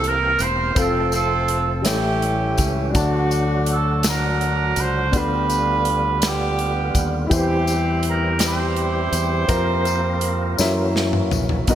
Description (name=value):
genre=slow gospel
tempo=55 BPM (dotted quarters)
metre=6/8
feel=straight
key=unclear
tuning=A4 = 439 Hz
part: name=warm horn section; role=melody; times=0.0-10.9 s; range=A3 to C5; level=-22 LUFS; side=right 3 dB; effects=digital delay
part: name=warm upright piano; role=accompaniment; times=0.0-11.8 s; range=A2 to A5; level=-25 LUFS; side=left 2 dB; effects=none
part: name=percussive tonewheel organ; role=sustained chords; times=0.0-11.8 s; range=D3 to Bb4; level=-28 LUFS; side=right 1 dB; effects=fast rotary speaker, overdrive, chorus vibrato
part: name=fingered electric bass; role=bass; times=0.0-11.8 s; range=E1 to Gb2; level=-23 LUFS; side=equal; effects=none
part: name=natural country drum kit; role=drums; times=0.0-11.8 s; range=hi-hat, kick drum, snare drum, toms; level=-24 LUFS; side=equal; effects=none
part: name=tambourine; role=percussion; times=0.4-11.8 s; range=none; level=-31 LUFS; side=left 7 dB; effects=none
room=moderate lush hall reverb, RT60 2.8 s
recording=bright 1980s-style digital production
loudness=-18 LUFS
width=side -10 dB against mid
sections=0.0-11.7 A section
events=drum fill 10.6-11.7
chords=0.0 C7; 0.8 F; 1.9 A7; 2.9 D; 5.1 G7/D; 7.3 C/E; 9.5 Fsus4; 10.6 Gb7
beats=| 0.77 1.86 | 2.95 4.04 | 5.13 6.22 | 7.31 8.40 | 9.49 10.59 | 11.68